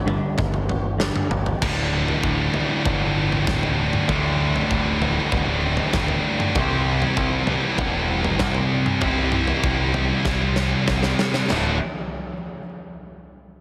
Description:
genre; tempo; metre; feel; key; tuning
quiet-loud alternative rock; 97 BPM; 4/4; straight; unclear; A4 = 438 Hz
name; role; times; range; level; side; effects
clean electric guitar; arpeggios; 0.0-1.6 s; G2 to G3; -29 LUFS; equal; lush chorus
growling picked electric bass; bass; 0.0-11.8 s; D1 to D2; -28 LUFS; equal; overdrive
huge arena drum kit; drums; 0.1-11.6 s; crash cymbal, kick drum, snare drum, splash cymbal, toms; -28 LUFS; equal; none
scooped high-gain guitar; riff; 1.6-11.8 s; D2 to C5; -25 LUFS; equal; distortion
sludgy distorted guitar; riff; 1.6-11.8 s; D2 to C4; -29 LUFS; equal; overdrive
room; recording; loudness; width
light reverb, studio ambience; heavily compressed radio sound; -22 LUFS; mono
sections
0.0-1.6 A section; 1.6-11.5 B section; 11.5-13.6 C section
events
drum fill 10.3-11.5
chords
0.0 G5; 1.6 Dsus4; 6.6 C; 11.5 D5

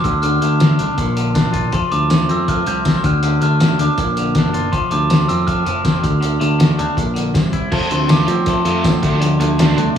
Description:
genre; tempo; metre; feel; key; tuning
indie rock; 160 BPM; 4/4; straight; D minor; A4 = 444 Hz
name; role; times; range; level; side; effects
glockenspiel with rubber mallets; melody; 0.0-9.2 s; A5 to G6; -22 LUFS; right 1 dB; digital delay
twangy electric guitar; riff; 0.0-10.0 s; Bb2 to F4; -21 LUFS; left 3 dB; none
picked electric bass; bass; 0.0-9.9 s; F1 to F3; -19 LUFS; equal; none
cloth-damped thuddy drum kit; drums; 0.0-9.9 s; crash cymbal, hi-hat, kick drum, snare drum, tambourine; -18 LUFS; left 1 dB; none
biting overdriven guitar; riff; 7.7-9.9 s; F3 to F4; -20 LUFS; right 7 dB; analog chorus, digital delay
room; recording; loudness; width
light reverb; studio reverb; -14 LUFS; side -8 dB against mid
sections
0.0-7.7 A section; 7.7-10.0 B section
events
glockenspiel solo 7.7-10.0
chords
0.0 Dm; 1.0 Bb; 1.7 F; 3.0 Dm; 4.0 Bb; 4.7 F; 6.0 Dm; 7.0 Bb; 7.3 C; 7.7 F; 9.0 Dm

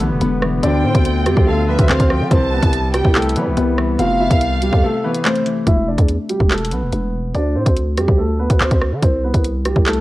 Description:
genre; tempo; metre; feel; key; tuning
hip hop, drill; 143 BPM; 4/4; half-time; E phrygian; A4 = 440 Hz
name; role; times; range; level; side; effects
dark concert grand piano; melody; 0.0-10.0 s; G3 to F5; -20 LUFS; right 1 dB; low-pass filter, slapback echo
Celtic harp; accompaniment; 0.0-8.6 s; C3 to C4; -22 LUFS; left 4 dB; low-pass filter
mellow brass ensemble; sustained chords; 0.0-5.7 s; C3 to F4; -28 LUFS; equal; none
growling 808-style bass; bass; 0.0-10.0 s; E1 to G3; -19 LUFS; equal; none
drill drum kit; drums; 0.0-10.0 s; handclaps, hi-hat, kick drum, rim click; -16 LUFS; equal; none
rich studio violin section; second line; 0.6-5.2 s; E5 to A5; -24 LUFS; right 1 dB; slapback echo
room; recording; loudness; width
light reverb; worn, warbling old tape, cassette tape, warbly pitch drift; -14 LUFS; side -17 dB against mid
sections
0.0-5.7 A section; 5.7-10.0 B section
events
break 4.8-5.7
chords
0.0 Em7; 0.6 Dm7; 2.3 Cmaj7; 4.0 Fmaj7; 5.7 Em7; 7.3 D7(no3); 9.0 C5

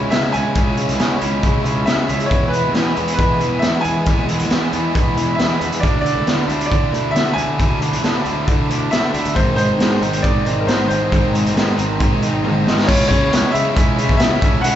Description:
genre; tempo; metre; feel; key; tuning
indie rock; 136 BPM; 4/4; straight; unclear; A4 = 439 Hz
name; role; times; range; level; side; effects
bright upright piano; melody; 0.0-14.8 s; A#4 to G#5; -22 LUFS; equal; tape echo
crunchy overdriven guitar; riff; 0.0-14.8 s; G#2 to E4; -20 LUFS; equal; slapback echo
fuzz fingered electric bass; bass; 0.0-14.8 s; G#1 to E3; -22 LUFS; equal; overdrive
raw garage drum kit; drums; 0.1-14.7 s; crash cymbal, hi-hat, kick drum, snare drum, toms; -18 LUFS; equal; none
room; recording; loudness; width
light reverb, small room ambience; live gig heard through the venue's PA, club reverb, nothing above 7.8 kHz; -15 LUFS; side -11 dB against mid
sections
0.0-12.9 A section; 12.9-14.8 B section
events
drum fill 12.4-12.9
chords
0.0 C#m; 2.3 E; 5.8 Dsus2; 9.4 G#; 12.9 C#m

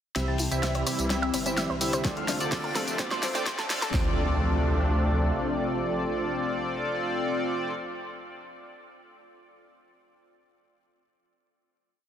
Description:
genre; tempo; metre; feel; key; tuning
progressive house; 127 BPM; 4/4; straight; D minor; A4 = 440 Hz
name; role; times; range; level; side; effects
filtered supersaw swell; sustained chords; 0.2-7.7 s; C3 to E4; -34 LUFS; equal; sidechain pumping
analog pluck; arpeggios; 0.2-4.2 s; C4 to E5; -35 LUFS; equal; chorus, vintage 12-bit sampler grit, sidechain pumping, dub echo
chorused polysynth; stabs; 0.2-7.7 s; C3 to A5; -29 LUFS; equal; sidechain pumping, dub echo
saturated sub bass; bass; 0.2-5.3 s; D1 to D2; -29 LUFS; equal; sidechain pumping
deep house drum kit; drums; 0.2-3.9 s; hi-hat, snare drum, tambourine; -32 LUFS; equal; studio reverb
warm soul drum kit; drums; 0.2-3.9 s; hi-hat, ride cymbal, snare drum; -42 LUFS; left 3 dB; none
riser and impact; sound effects; 1.8-7.8 s; none; -38 LUFS; equal; none
deep house drum kit; drums; 2.0-4.1 s; kick drum, snare drum; -30 LUFS; equal; studio reverb
room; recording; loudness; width
light reverb; dense, heavily limited modern master, high-pass filter; -25 LUFS; side -9 dB against mid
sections
0.2-3.9 build; 3.9-7.7 final chord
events
build-up 0.2-3.9; drum fill 0.2-3.9; filter sweep on synth arpeggio sound 0.2-3.9; filter sweep on analog polysynth 0.2-3.9; filter sweep 0.2-3.9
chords
0.2 C; 2.0 Dm7

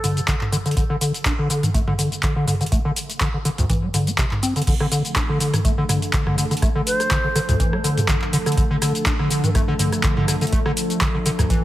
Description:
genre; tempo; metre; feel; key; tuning
acid house; 123 BPM; 4/4; swing 54% on 16ths; D minor; A4 = 440 Hz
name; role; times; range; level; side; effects
mellow silver concert flute; melody; 0.0, 6.9-7.6 s; C5; -26 LUFS; equal; digital delay
acid bass, square; riff; 0.0-11.6 s; D2 to D4; -22 LUFS; equal; overdrive, lush chorus, ping-pong delay
booming analog drum machine; drums; 0.0-11.6 s; crash cymbal, handclaps, hi-hat, rim click, shaker, toms; -23 LUFS; equal; none
electronic kick drum; drums; 0.3-11.6 s; none; -22 LUFS; equal; none
warbly tape-like pad; sustained chords; 4.7-11.6 s; F3 to A4; -27 LUFS; equal; chorus, built-in reverb, sidechain pumping
room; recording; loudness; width
light reverb; heavily compressed radio sound, multiband compression; -18 LUFS; side -14 dB against mid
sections
0.0-4.7 A section; 4.7-11.6 B section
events
drop 4.7-11.6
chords
0.0 D5; 4.7 Dm

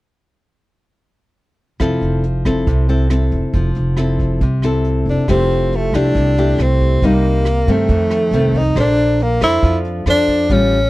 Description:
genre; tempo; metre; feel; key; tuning
bossa nova; 138 BPM; 4/4; straight; F major; A4 = 440 Hz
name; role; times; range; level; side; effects
nylon-string guitar; accompaniment; 1.8-10.9 s; F2 to C5; -19 LUFS; left 2 dB; none
upright bass; bass; 1.8-10.9 s; F1 to G2; -17 LUFS; equal; none
vintage brush drum kit; drums; 1.8-10.8 s; hi-hat, kick drum, rim click; -21 LUFS; equal; none
breathy tenor saxophone; melody; 5.1-10.9 s; A3 to E4; -16 LUFS; equal; none
room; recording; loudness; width
small room reverb; dry, close 1970s-style studio recording; -13 LUFS; side -18 dB against mid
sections
1.8-5.3 A section; 5.3-10.9 B section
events
none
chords
1.8 Fmaj7; 5.3 Fmaj9; 7.0 Cm7; 7.9 F7; 8.8 Bbmaj9

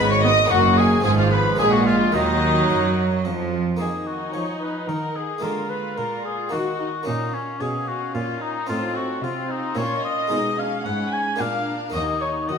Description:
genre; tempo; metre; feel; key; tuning
classical, baroque-style concerto movement with solo episodes; 110 BPM; 3/4; straight; Eb minor; A4 = 440 Hz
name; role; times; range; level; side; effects
rich chamber violin section; melody; 0.0-12.6 s; D5 to Eb6; -32 LUFS; left 3 dB; none
warm oboe; melody; 0.0-12.6 s; Db4 to Ab5; -26 LUFS; left 3 dB; none
warm studio violin section; second line; 0.0-12.6 s; Db4 to Ab5; -26 LUFS; left 1 dB; none
harpsichord; accompaniment; 0.0-12.6 s; Eb2 to Ab4; -30 LUFS; right 1 dB; none
warm chamber viola section; accompaniment; 0.0-12.6 s; F3 to Gb4; -27 LUFS; right 1 dB; none
rich chamber cello section; bass; 0.0-12.6 s; Eb2 to Gb3; -27 LUFS; right 3 dB; none
rich chamber double bass section; bass; 0.0-3.8 s; Gb1 to Gb2; -24 LUFS; right 3 dB; none
room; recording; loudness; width
wet recital hall reverb, RT60 1.5 s; minimal, uncompressed stereo recording; -19 LUFS; side -6 dB against mid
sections
0.0-3.8 A section; 3.8-12.6 B section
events
none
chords
0.0 Abm; 0.5 Ebm/Gb; 1.1 Fdim/Ab; 1.6 Bb7; 2.1 Ebm; 5.4 Bb7/D; 6.5 Ebm; 7.1 Bbm; 8.7 F7/A; 9.8 Bbm; 10.3 Abm/Cb; 11.4 Bb; 11.9 Ebm

